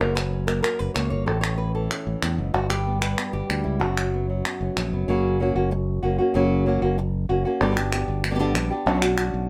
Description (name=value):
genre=flamenco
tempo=189 BPM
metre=4/4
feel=straight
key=F# phrygian dominant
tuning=A4 = 440 Hz
part: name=flamenco guitar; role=melody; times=0.0-9.5 s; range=F#2 to C#5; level=-27 LUFS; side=equal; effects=none
part: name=modern bright fingered electric bass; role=bass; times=0.0-9.5 s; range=F#1 to E2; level=-28 LUFS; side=equal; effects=none
part: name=palmas hand claps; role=percussion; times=0.0-4.9, 7.6-9.3 s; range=none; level=-29 LUFS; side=equal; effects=none
room=light reverb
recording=close, detailed microphones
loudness=-24 LUFS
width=mono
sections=0.0-5.1 A section; 5.1-9.5 B section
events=none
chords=0.0 F#; 1.3 A; 2.5 G; 3.8 F#sus4; 5.1 F#; 7.6 G; 8.9 Bmadd9